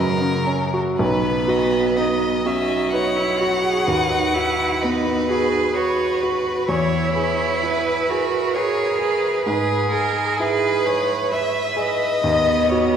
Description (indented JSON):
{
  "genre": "classical, slow romantic movement for piano quartet",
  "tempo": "64 BPM",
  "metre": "3/4",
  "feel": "uneven beats, rubato",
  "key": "B major",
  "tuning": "A4 = 440 Hz",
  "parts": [
    { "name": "rich cello", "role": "second line", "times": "0.0-13.0 s", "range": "C#3 to C#5", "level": "-22 LUFS", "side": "right 5 dB", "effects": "none" },
    { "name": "rich violin", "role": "second line", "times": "0.0-13.0 s", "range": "G#4 to F#5", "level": "-24 LUFS", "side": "left 2 dB", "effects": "none" },
    { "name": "clear grand piano", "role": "accompaniment", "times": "0.0-13.0 s", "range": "B1 to B4", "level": "-23 LUFS", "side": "equal", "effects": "none" },
    { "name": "rich violin", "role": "melody", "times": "1.0-13.0 s", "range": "G#4 to E5", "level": "-27 LUFS", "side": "left 2 dB", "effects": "none" }
  ],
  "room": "wet church reverb, RT60 2.7 s",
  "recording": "recorded in a church or concert hall",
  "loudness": "-18 LUFS",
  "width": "side -8 dB against mid",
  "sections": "1.0-13.0 A section",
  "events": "none",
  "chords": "0.0 F#; 1.0 B; 3.9 B/D#; 6.7 E; 9.5 E/G#; 12.2 B/D#"
}